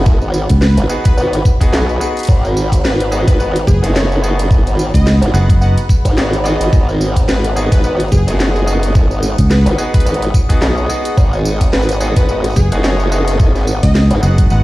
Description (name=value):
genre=glitch hop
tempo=108 BPM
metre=4/4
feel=swing 56% on 16ths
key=G# minor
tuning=A4 = 440 Hz
part: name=dark analog pad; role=sustained chords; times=0.0-14.6 s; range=G#4 to D#6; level=-26 LUFS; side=equal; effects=chorus, phaser, sidechain pumping
part: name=bright grand piano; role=stabs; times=0.0-14.6 s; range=B3 to B4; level=-21 LUFS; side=equal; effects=vintage 12-bit sampler grit, sidechain pumping, dub echo
part: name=formant-sweep wobble bass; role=bass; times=0.0-14.2 s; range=F#1 to B1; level=-15 LUFS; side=equal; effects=chorus
part: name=drum and bass drum kit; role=drums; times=0.1-14.6 s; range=hi-hat, rim click, snare drum, tambourine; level=-22 LUFS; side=equal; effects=none
part: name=electronic kick drum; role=drums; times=0.1-14.5 s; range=none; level=-11 LUFS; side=equal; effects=none
part: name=fingered electric bass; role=bass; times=0.5-14.6 s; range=F#1 to C#2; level=-11 LUFS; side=equal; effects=none
part: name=plucky unison lead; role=melody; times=0.6-14.6 s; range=G#4 to F#5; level=-24 LUFS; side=equal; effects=dub echo
room=little or no reverb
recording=played on a big sound system in a bare room, stone room reverb, vinyl crackle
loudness=-11 LUFS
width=side -18 dB against mid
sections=0.0-14.6 A section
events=none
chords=0.0 G#m7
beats=| 0.06 0.62 1.17 1.73 | 2.28 2.84 3.40 3.95 | 4.51 5.06 5.62 6.17 | 6.73 7.28 7.84 8.39 | 8.95 9.51 10.06 10.62 | 11.17 11.73 12.28 12.84 | 13.39 13.95 14.51